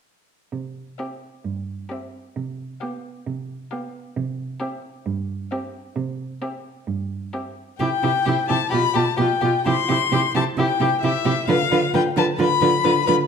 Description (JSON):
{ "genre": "quick classical-period movement for string quartet", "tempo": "132 BPM", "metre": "4/4", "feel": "straight", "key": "C major", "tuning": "A4 = 440 Hz", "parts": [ { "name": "warm cello", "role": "bass", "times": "0.5-13.2 s", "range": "G2 to D3", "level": "-25 LUFS", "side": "right 5 dB", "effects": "none" }, { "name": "dark violin", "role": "melody", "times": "1.0-13.2 s", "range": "E5 to C6", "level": "-22 LUFS", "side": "left 8 dB", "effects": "none" }, { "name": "rich violin", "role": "second line", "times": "1.0-13.1 s", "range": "G4 to B4", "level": "-27 LUFS", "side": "left 2 dB", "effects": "none" }, { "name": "warm viola", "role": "accompaniment", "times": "1.0-13.2 s", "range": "B3 to F4", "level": "-25 LUFS", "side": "right 1 dB", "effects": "none" } ], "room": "wet recital hall reverb, RT60 1.3 s", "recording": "none", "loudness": "-19 LUFS", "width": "side -6 dB against mid", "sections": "0.5-7.8 A section; 7.8-13.3 B section", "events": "none", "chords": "0.5 C; 2.4 G7/C; 4.2 C; 8.7 G7/B; 9.7 C; 11.5 Bdim/D" }